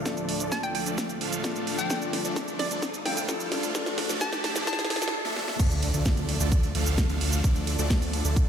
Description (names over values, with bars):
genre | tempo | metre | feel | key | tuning
EDM, festival progressive house | 130 BPM | 4/4 | straight | D minor | A4 = 440 Hz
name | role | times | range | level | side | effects
warm concert grand piano | accompaniment | 0.0-5.6 s | F3 to A4 | -36 LUFS | left 6 dB | sidechain pumping, ping-pong delay
lush unison pad | sustained chords | 0.0-8.5 s | D2 to F4 | -38 LUFS | equal | chorus, sidechain pumping
supersaw chords | riff | 0.0-8.5 s | F3 to F5 | -32 LUFS | right 2 dB | phaser, sidechain pumping, low-pass filter, ping-pong delay
riser, swell and impact | sound effects | 0.9-7.4 s | none | -36 LUFS | equal | none
electronic kick drum | drums | 0.1-8.5 s | none | -25 LUFS | equal | high-pass filter on kick, high-pass filter on room
house drum kit | drums | 0.1-8.5 s | crash cymbal, hi-hat, ride cymbal, shaker, snare drum | -31 LUFS | right 1 dB | none
hollow square pluck | melody | 0.5-5.1 s | D5 to A5 | -34 LUFS | left 1 dB | chorus, ping-pong delay
fat analog bass | bass | 5.6-8.5 s | D2 | -28 LUFS | equal | sidechain pumping
room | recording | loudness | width
light reverb, digital ambience | high-pass filter | -24 LUFS | side -8 dB against mid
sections
0.0-5.6 A section; 5.6-8.5 B section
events
build-up 0.0-5.6; drum fill 0.0-5.1, 5.2-5.6; filter sweep on supersaw synth 0.0-5.6; riser 0.9-5.1; swell 4.7-5.6; break 5.1-5.6; drop 5.6-8.5; impact 5.6-7.4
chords
0.0 Dm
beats
| 0.06 0.52 0.98 1.44 | 1.90 2.36 2.83 3.29 | 3.75 4.21 4.67 5.13 | 5.59 6.06 6.52 6.98 | 7.44 7.90 8.36